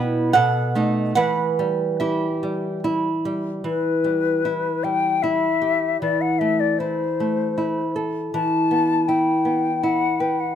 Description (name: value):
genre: romantic duo for flute and classical guitar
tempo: 71-82 BPM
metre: 3/4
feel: rubato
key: E minor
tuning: A4 = 435 Hz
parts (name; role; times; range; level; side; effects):
- nylon-string guitar; accompaniment; 0.0-10.6 s; B2 to G5; -21 LUFS; right 2 dB; none
- mellow hollow silver concert flute; melody; 3.6-10.6 s; B4 to A5; -22 LUFS; left 7 dB; none
room: light reverb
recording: close, detailed microphones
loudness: -19 LUFS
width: side -9 dB against mid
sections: 0.0-3.6 A section; 3.6-10.6 A section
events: none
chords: 0.4 B7; 1.2 Em; 6.0 Am/E; 8.3 Em